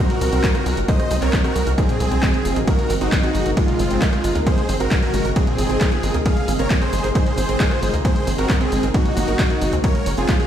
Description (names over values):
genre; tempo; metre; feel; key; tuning
uplifting trance; 134 BPM; 4/4; straight; unclear; A4 = 440 Hz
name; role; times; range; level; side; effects
dense compressed supersaw; melody; 0.0-10.5 s; Ab3 to F5; -23 LUFS; equal; sidechain pumping, ping-pong delay
analog string pad; sustained chords; 0.0-10.5 s; C3 to Gb4; -27 LUFS; left 1 dB; ensemble chorus, sidechain pumping
wide unison pluck; arpeggios; 0.0-10.5 s; Bb2 to Bb4; -28 LUFS; right 4 dB; sidechain pumping, ping-pong delay
punchy analog drum machine; drums; 0.1-10.5 s; handclaps, hi-hat, ride cymbal, rim click, shaker; -28 LUFS; equal; overdrive, sidechain pumping on hats, sidechain pumping on perc, sidechain pumping on cymbals
tight sequencer bass; bass; 0.2-10.3 s; Gb1 to Eb2; -23 LUFS; equal; sidechain pumping
electronic kick drum; drums; 0.4-10.4 s; none; -20 LUFS; equal; overdrive
room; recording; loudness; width
light reverb, digital ambience; played on a big sound system in a bare room, stone room reverb; -16 LUFS; side -10 dB against mid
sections
0.0-10.5 A section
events
none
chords
0.0 Cdim; 2.7 Abadd9; 9.8 Gb